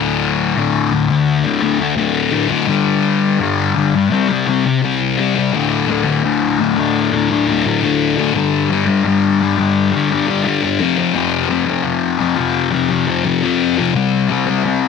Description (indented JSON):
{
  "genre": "rock",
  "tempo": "85 BPM",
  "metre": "4/4",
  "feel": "straight",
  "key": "D minor",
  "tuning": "A4 = 440 Hz",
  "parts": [
    { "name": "thick fuzz guitar", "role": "solo", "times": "0.0-14.9 s", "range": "D2 to C4", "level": "-14 LUFS", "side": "left 6 dB", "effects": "distortion, phaser" }
  ],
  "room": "light reverb",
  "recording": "none",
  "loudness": "-14 LUFS",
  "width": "side -5 dB against mid",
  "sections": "0.0-5.5 A section; 5.5-14.9 B section",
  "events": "none",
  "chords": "0.0 D5; 2.7 G5; 4.1 C5; 5.5 D5; 8.3 G5; 10.8 F5; 13.9 C5",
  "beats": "0.56 1.27 1.98 | 2.69 3.40 4.11 4.82 | 5.53 6.23 6.94 7.64 | 8.34 9.04 9.75 10.45 | 11.15 11.85 12.55 13.24 | 13.94 14.64"
}